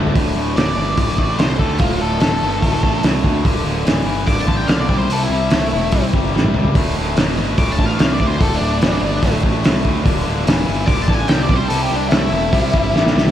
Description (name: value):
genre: classic rock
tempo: 145 BPM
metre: 4/4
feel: straight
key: D mixolydian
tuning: A4 = 440 Hz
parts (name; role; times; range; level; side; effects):
- string machine, full ensemble; sustained chords; 0.0-13.3 s; A3 to E5; -31 LUFS; equal; none
- biting overdriven guitar; riff; 0.0-13.3 s; D2 to F#4; -21 LUFS; left 1 dB; slapback echo
- crunchy overdriven guitar; riff; 0.0-0.6 s; D2 to F#4; -29 LUFS; right 1 dB; slapback echo
- fuzz picked electric bass; bass; 0.0-13.3 s; D1 to D2; -21 LUFS; equal; overdrive
- cloth-damped thuddy drum kit; drums; 0.1-13.3 s; hi-hat, kick drum, snare drum, toms; -17 LUFS; equal; none
- octave-fuzz lead guitar; melody; 0.6-13.3 s; D4 to D6; -23 LUFS; left 1 dB; distortion
room: moderate lush hall reverb, RT60 2.4 s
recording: big arena sound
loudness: -14 LUFS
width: side -11 dB against mid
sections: 0.1-13.3 A section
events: lead electric guitar solo 0.1-13.3; drum fill 6.3-6.8, 12.9-13.3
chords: 0.1 D; 3.5 G/D; 4.9 C; 6.8 D; 10.1 G/D; 11.5 C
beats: | 0.15 0.56 0.97 1.39 | 1.80 2.21 2.62 3.04 | 3.45 3.86 4.28 4.69 | 5.10 5.52 5.93 6.34 | 6.75 7.17 7.58 7.99 | 8.40 8.82 9.23 9.64 | 10.05 10.47 10.88 11.29 | 11.70 12.11 12.52 12.94